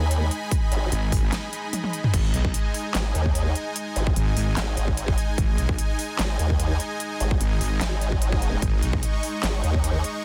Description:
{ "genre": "heavy wobble dubstep", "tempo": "148 BPM", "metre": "4/4", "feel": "half-time", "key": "G# minor", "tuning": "A4 = 441 Hz", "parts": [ { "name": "supersaw pad", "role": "sustained chords", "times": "0.0-10.2 s", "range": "G#3 to C#6", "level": "-33 LUFS", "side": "equal", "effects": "sidechain pumping" }, { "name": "formant-sweep wobble bass", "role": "bass", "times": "0.0-10.0 s", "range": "G#1 to D#2", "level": "-26 LUFS", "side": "equal", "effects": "chorus, overdrive" }, { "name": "rich studio string section", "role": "texture", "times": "0.0-2.1 s", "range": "G#5", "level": "-40 LUFS", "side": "equal", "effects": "sidechain pumping" }, { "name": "big-room dance drum kit", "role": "drums", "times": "0.1-10.1 s", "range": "crash cymbal, handclaps, hi-hat, snare drum, toms", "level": "-31 LUFS", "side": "equal", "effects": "none" }, { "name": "electronic kick drum", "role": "drums", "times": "0.5-9.8 s", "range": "none", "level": "-26 LUFS", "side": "equal", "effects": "none" }, { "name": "wobble bass", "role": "bass", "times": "0.9-9.0 s", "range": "G#1 to B1", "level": "-26 LUFS", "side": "equal", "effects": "chorus, overdrive" } ], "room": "digital ambience", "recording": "dense, heavily limited modern master", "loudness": "-24 LUFS", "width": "mono", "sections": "0.0-2.1 A section; 2.1-10.2 A section", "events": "drop 0.0-2.1, 2.1-10.2; break 1.3-2.1; drum fill 1.7-2.1", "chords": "0.0 G#5" }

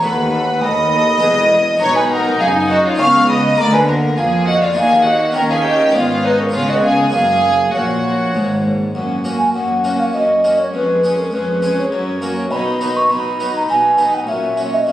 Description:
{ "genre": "classical, baroque-style concerto movement with solo episodes", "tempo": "102 BPM", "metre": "3/4", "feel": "straight", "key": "F# major", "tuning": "A4 = 441 Hz", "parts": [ { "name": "mellow hollow baroque flute", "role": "melody", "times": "0.0-14.9 s", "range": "A#4 to C#6", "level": "-16 LUFS", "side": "equal", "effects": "none" }, { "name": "rich chamber violin section", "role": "melody", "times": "0.0-14.9 s", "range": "F#4 to E#6", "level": "-25 LUFS", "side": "left 2 dB", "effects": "none" }, { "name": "warm chamber violin section", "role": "second line", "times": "0.0-14.9 s", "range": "C#4 to E#5", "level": "-20 LUFS", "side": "left 1 dB", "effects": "none" }, { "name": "harpsichord", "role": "accompaniment", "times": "0.0-14.9 s", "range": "D#2 to B4", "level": "-25 LUFS", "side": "equal", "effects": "none" }, { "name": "warm chamber viola section", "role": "accompaniment", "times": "0.0-14.9 s", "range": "F#3 to A4", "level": "-23 LUFS", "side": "equal", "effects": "none" }, { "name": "dark chamber cello section", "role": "bass", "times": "0.0-14.9 s", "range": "D#2 to E#3", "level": "-23 LUFS", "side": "right 1 dB", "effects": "none" }, { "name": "dark chamber double bass section", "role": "bass", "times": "0.1-8.9 s", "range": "E1 to E#2", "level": "-24 LUFS", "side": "right 1 dB", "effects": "none" } ], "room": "wet concert hall reverb, RT60 1.8 s", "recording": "recorded on a phone in the room, club reverb, compression", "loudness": "-13 LUFS", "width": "side -13 dB against mid", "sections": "0.0-8.9 A section; 8.9-14.9 B section", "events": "none", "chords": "0.0 B7/D#; 1.2 E; 1.8 B; 3.0 C#7; 3.6 A#7/D; 4.8 D#m; 5.3 D#7; 5.9 G#m; 6.5 C#7; 7.1 F#; 10.7 C#/E#; 11.9 F#; 12.5 B; 14.3 F#/A#" }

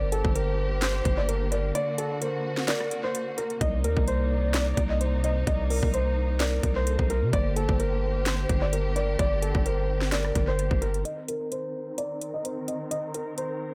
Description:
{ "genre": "hip hop, trap", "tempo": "129 BPM", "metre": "4/4", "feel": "half-time", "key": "unclear", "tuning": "A4 = 435 Hz", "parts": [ { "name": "dark baby grand piano", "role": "melody", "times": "0.0-13.7 s", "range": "A4 to Eb5", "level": "-33 LUFS", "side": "equal", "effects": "low-pass filter, analog delay" }, { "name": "gliding portamento lead", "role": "second line", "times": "0.0-10.6 s", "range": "A4 to D5", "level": "-37 LUFS", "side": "equal", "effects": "chorus, analog delay" }, { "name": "muted studio string section", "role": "sustained chords", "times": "0.0-13.7 s", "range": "C3 to Bb4", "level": "-37 LUFS", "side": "equal", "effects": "low-pass filter" }, { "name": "long sustained 808-style bass", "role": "bass", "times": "0.0-11.0 s", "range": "G1 to C3", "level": "-29 LUFS", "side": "equal", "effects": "none" }, { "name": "trap drum kit", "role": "drums", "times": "0.1-13.5 s", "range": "handclaps, hi-hat, kick drum, rim click, snare drum", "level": "-31 LUFS", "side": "equal", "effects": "analog delay" } ], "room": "little or no reverb", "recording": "echo-heavy mix", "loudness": "-27 LUFS", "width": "mono", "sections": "0.0-11.1 A section; 11.1-13.7 B section", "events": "break 1.8-3.6; filter sweep 11.1-13.7", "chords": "0.0 Gm; 3.6 Cm7; 7.3 Gm; 11.1 Cm7" }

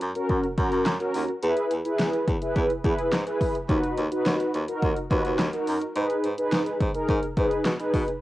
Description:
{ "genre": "synth-pop", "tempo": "106 BPM", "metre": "4/4", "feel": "straight", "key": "G# minor", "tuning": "A4 = 438 Hz", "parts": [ { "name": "breathy baritone saxophone", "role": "bass", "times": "0.0-8.0 s", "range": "D#2 to B2", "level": "-28 LUFS", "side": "equal", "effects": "none" }, { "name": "deep house drum kit", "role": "drums", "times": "0.0-8.2 s", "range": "handclaps, hi-hat, kick drum, snare drum", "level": "-28 LUFS", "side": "equal", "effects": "overdrive, cassette tape" }, { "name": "mellow synth brass", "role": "accompaniment", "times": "0.2-8.1 s", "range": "C#4 to B4", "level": "-25 LUFS", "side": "equal", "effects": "chorus, cassette tape" } ], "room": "light reverb, digital ambience", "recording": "home recording on cassette", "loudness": "-23 LUFS", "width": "side -16 dB against mid", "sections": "0.0-8.2 A section", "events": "none", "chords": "0.0 F#; 1.4 E; 3.7 B/D#; 6.0 G#madd9" }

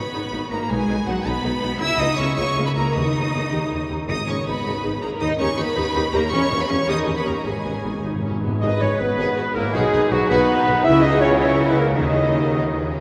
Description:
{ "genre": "classical, dramatic, fast romantic movement for symphony orchestra", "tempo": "107 BPM (dotted quarters)", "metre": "6/8", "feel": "straight", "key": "G# minor", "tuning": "A4 = 440 Hz", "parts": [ { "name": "warm symphonic violin section", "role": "melody", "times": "0.0-13.0 s", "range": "F#4 to E6", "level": "-30 LUFS", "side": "equal", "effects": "none" }, { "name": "dark studio violin section", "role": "second line", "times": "0.0-12.9 s", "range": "F#4 to E5", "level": "-31 LUFS", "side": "equal", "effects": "none" }, { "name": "warm symphonic viola section", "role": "accompaniment", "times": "0.0-12.8 s", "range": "A#3 to B4", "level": "-30 LUFS", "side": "equal", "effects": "none" }, { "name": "concert harp", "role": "arpeggios", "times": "0.0-13.0 s", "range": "G#2 to G5", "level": "-31 LUFS", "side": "equal", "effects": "none" }, { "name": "rich symphonic cello section", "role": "bass", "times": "0.0-12.9 s", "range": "G#2 to E4", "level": "-29 LUFS", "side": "equal", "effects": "none" }, { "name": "rich symphonic double bass section", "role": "bass", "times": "0.0-12.9 s", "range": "G#1 to E2", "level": "-32 LUFS", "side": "equal", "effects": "none" }, { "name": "clear tuba", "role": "bass", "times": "0.1-12.9 s", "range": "E1 to D#2", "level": "-33 LUFS", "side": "equal", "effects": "none" }, { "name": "timpani", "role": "percussion", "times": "3.0-4.6, 7.5-9.1 s", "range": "G#2 to D#3", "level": "-33 LUFS", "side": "equal", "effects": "none" }, { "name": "mellow hollow flute section", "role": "second line", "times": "8.6-12.9 s", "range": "F#4 to E5", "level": "-30 LUFS", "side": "equal", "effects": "none" }, { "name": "warm clarinet", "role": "second line", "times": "8.6-12.9 s", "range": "F#4 to E5", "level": "-28 LUFS", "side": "equal", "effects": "none" }, { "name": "warm oboe", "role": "second line", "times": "8.6-12.9 s", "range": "F#4 to E5", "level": "-31 LUFS", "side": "equal", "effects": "none" }, { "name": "mellow French horn section", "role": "sustained chords", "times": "8.6-12.9 s", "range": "F#3 to E4", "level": "-24 LUFS", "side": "equal", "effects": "none" } ], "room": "wet cathedral reverb, RT60 5.9 s", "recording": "none", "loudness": "-20 LUFS", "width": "mono", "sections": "0.0-8.6 A section; 8.6-13.0 B section", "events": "timpani fill 7.5-8.6", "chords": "0.0 G#m; 0.7 B; 1.8 C#m7; 2.4 A#dim/C#; 2.9 G#m/D#; 3.5 D#; 4.1 G#m; 5.2 D#; 6.3 C#m/E; 6.9 D#7; 7.5 G#m; 9.7 B; 10.8 C#m7; 11.4 A#dim/C#; 12.0 G#5/D#" }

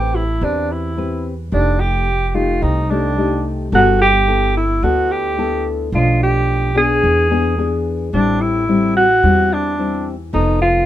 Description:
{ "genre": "bossa nova", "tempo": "109 BPM", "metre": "4/4", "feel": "straight", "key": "unclear", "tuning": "A4 = 440 Hz", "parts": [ { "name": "breathy alto saxophone", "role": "melody", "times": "0.0-10.9 s", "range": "D4 to G#4", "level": "-16 LUFS", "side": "right 1 dB", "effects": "none" }, { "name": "nylon-string guitar", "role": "accompaniment", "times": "0.0-10.9 s", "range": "A2 to B4", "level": "-20 LUFS", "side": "left 4 dB", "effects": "none" }, { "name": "upright bass", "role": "bass", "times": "0.0-10.9 s", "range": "F1 to E2", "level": "-20 LUFS", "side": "right 1 dB", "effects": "none" } ], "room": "moderate studio reverb, RT60 0.5 s", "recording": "minimal, uncompressed stereo recording", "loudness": "-14 LUFS", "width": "side -12 dB against mid", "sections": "0.0-10.9 A section", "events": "none", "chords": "0.0 Am9; 1.5 F9; 3.7 G69; 5.9 Bm7b5; 7.0 E7; 8.1 Am7; 10.3 F7#11" }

